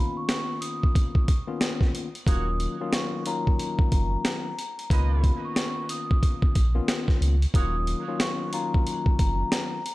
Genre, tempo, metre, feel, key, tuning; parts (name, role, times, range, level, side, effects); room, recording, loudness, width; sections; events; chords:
hip hop, boom-bap hip-hop; 91 BPM; 4/4; swing 63% on 16ths; Eb minor; A4 = 440 Hz
vibraphone with soft mallets; melody; 0.0-9.9 s; Bb5 to Eb6; -33 LUFS; equal; high-pass filter, low-pass filter, tape echo
tine electric piano; accompaniment; 0.0-9.8 s; Eb3 to F4; -32 LUFS; left 4 dB; high-pass filter, low-pass filter
boom bap sampler-style drum kit; drums; 0.3-9.9 s; hi-hat, kick drum, snare drum; -24 LUFS; equal
mellow horn section; stabs; 2.3-7.8 s; Bb3 to Eb5; -42 LUFS; right 11 dB; high-pass filter, low-pass filter, tape echo
sub bass with octave; bass; 2.3-9.4 s; Eb1 to Db2; -24 LUFS; equal
little or no reverb; -23 LUFS; side -19 dB against mid
0.0-9.9 A section
break 0.0-2.3
0.0 Db13; 2.3 Ebm9; 4.9 Db13; 7.5 Ebm9